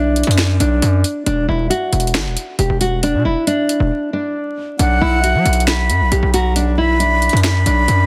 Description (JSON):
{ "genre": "hip hop, trap", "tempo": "136 BPM", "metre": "4/4", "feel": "half-time", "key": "B minor", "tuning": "A4 = 440 Hz", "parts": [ { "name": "nylon-string guitar", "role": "melody", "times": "0.0-8.1 s", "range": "D4 to G4", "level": "-21 LUFS", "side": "equal", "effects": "low-pass filter, tape echo" }, { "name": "distorted 808-style bass", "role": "bass", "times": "0.0-8.1 s", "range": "E1 to F#3", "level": "-18 LUFS", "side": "equal", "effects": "distortion" }, { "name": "trap drum kit", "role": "drums", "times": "0.2-8.0 s", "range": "finger snaps, hi-hat, snare drum", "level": "-23 LUFS", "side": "equal", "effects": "none" }, { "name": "breathy concert flute", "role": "second line", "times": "4.8-8.1 s", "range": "F#5 to B5", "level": "-20 LUFS", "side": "equal", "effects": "tape echo" } ], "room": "light reverb", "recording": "dense, heavily limited modern master, vinyl crackle", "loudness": "-16 LUFS", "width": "mono", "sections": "0.0-8.1 A section", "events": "break 3.9-4.8", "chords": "0.0 Bm; 1.3 N.C.; 4.8 Bm" }